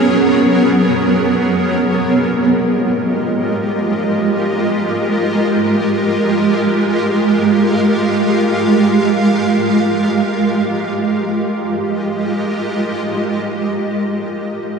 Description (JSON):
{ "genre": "IDM", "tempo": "free time", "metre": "none", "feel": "none", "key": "F minor", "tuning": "A4 = 440 Hz", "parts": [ { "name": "warbly nostalgic lead", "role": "melody", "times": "0.0-1.4 s", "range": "Db4", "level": "-21 LUFS", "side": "right 1 dB", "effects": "none" }, { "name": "granular cloud pad", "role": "sustained chords", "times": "0.0-14.1 s", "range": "Gb3 to F5", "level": "-13 LUFS", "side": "right 1 dB", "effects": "built-in reverb" } ], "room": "wet huge ambient reverb, RT60 8.3 s", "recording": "nothing above 10.6 kHz", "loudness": "-13 LUFS", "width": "side -5 dB against mid", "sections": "0.0-2.0 A section; 2.0-11.1 B section; 11.1-13.3 C section", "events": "none", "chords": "0.0 Abm11; 2.0 Fm11", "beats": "free time" }